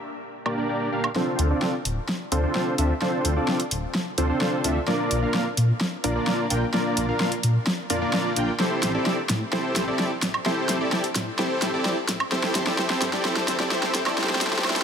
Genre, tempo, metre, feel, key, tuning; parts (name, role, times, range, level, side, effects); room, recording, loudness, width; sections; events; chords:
EDM, festival progressive house; 129 BPM; 4/4; straight; D minor; A4 = 440 Hz
dense compressed supersaw; riff; 0.5-14.8 s; Bb3 to G5; -24 LUFS; equal; low-pass filter, dub echo
big-room dance drum kit; drums; 0.5-14.8 s; hi-hat, snare drum, woodblock; -26 LUFS; equal; overdrive
wide detuned saw bass; bass; 1.4-14.6 s; D1 to Bb2; -26 LUFS; equal; chorus
moderate huge ambient reverb, RT60 4.9 s; high-pass filter; -22 LUFS; side -7 dB against mid
0.0-1.2 A section; 1.2-14.8 B section
build-up 1.2-14.8; drum fill 1.2-14.8; filter sweep on supersaw synth 1.2-14.8; filter sweep 1.2-14.8
0.0 Gm; 1.2 Dm7; 4.9 Bb; 8.6 Am7; 12.3 G5